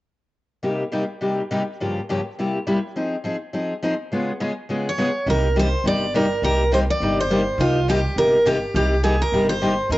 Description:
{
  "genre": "acoustic string swing (jazz manouche)",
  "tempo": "207 BPM",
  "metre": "4/4",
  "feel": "swing 58% on 8ths",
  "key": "C minor",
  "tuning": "A4 = 443 Hz",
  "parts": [
    { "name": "picked steel-string acoustic guitar", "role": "accompaniment", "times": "0.6-10.0 s", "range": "G2 to Ab4", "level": "-22 LUFS", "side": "left 1 dB", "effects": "none" },
    { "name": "picked steel-string acoustic guitar", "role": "melody", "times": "4.9-10.0 s", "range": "F4 to D5", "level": "-20 LUFS", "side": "right 1 dB", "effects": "cassette tape" },
    { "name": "upright bass", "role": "bass", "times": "5.3-10.0 s", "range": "G1 to F2", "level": "-24 LUFS", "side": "equal", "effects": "none" }
  ],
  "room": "moderate spring reverb, RT60 1.3 s, studio ambience",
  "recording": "home recording on cassette, nothing above 7.9 kHz",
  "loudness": "-19 LUFS",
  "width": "side -17 dB against mid",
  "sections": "0.6-5.3 A section; 5.3-10.0 B section",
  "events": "none",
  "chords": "0.6 Cm7; 1.8 Gm7b5; 2.4 C7; 3.0 Fm7; 4.1 Db7; 5.3 Cm7"
}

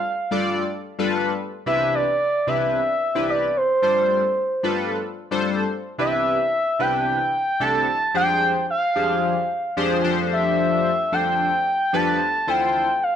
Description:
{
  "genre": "funk",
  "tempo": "111 BPM",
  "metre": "4/4",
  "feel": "straight",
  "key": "C major",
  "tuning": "A4 = 440 Hz",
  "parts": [
    { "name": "expressive portamento lead", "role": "melody", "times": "0.0-13.2 s", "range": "C5 to A5", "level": "-20 LUFS", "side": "right 1 dB", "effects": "chorus" },
    { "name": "chorused polysynth", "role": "accompaniment", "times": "0.3-12.9 s", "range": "C3 to D5", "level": "-23 LUFS", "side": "left 2 dB", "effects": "none" }
  ],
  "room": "moderate large studio reverb, RT60 0.9 s, digital ambience",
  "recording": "none",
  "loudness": "-19 LUFS",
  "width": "side -8 dB against mid",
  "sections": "0.0-6.0 A section; 6.0-13.2 B section",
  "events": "none",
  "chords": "0.0 G7(no3); 1.7 Cmaj9; 3.8 G7sus4; 6.0 Cmaj7; 8.2 Fm6; 10.0 F69; 12.5 Dm7"
}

